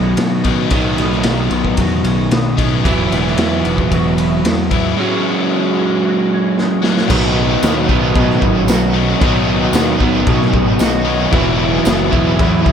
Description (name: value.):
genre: rock, shoegaze and dream pop.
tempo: 113 BPM.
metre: 4/4.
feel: straight.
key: B major.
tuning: A4 = 440 Hz.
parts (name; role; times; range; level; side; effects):
twangy electric guitar; arpeggios; 0.0-12.7 s; D#3 to F#4; -25 LUFS; equal; ensemble chorus, tape echo.
biting overdriven guitar; riff; 0.0-12.7 s; B2 to F#4; -18 LUFS; left 8 dB; lush chorus.
overdriven semi-hollow guitar; riff; 0.0-12.7 s; B2 to F#4; -17 LUFS; right 7 dB; reverse reverb.
growling picked electric bass; bass; 0.0-12.7 s; E1 to B2; -20 LUFS; left 1 dB; overdrive.
raw garage drum kit; drums; 0.2-12.7 s; crash cymbal, kick drum, ride cymbal, snare drum; -18 LUFS; left 1 dB; none.
biting overdriven guitar; riff; 7.1-12.7 s; B2 to E4; -21 LUFS; equal; harmonic tremolo.
tambourine; percussion; 7.6-12.0 s; none; -32 LUFS; right 8 dB; none.
room: moderate huge ambient reverb, RT60 7.7 s.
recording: dreamy mix soaked in reverb.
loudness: -12 LUFS.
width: side -8 dB against mid.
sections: 0.0-7.1 A section; 7.1-12.7 B section.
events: drum fill 6.6-7.1.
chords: 0.0 Badd9; 2.8 Esus2; 5.0 F#sus2; 7.1 Badd9; 11.3 Esus2.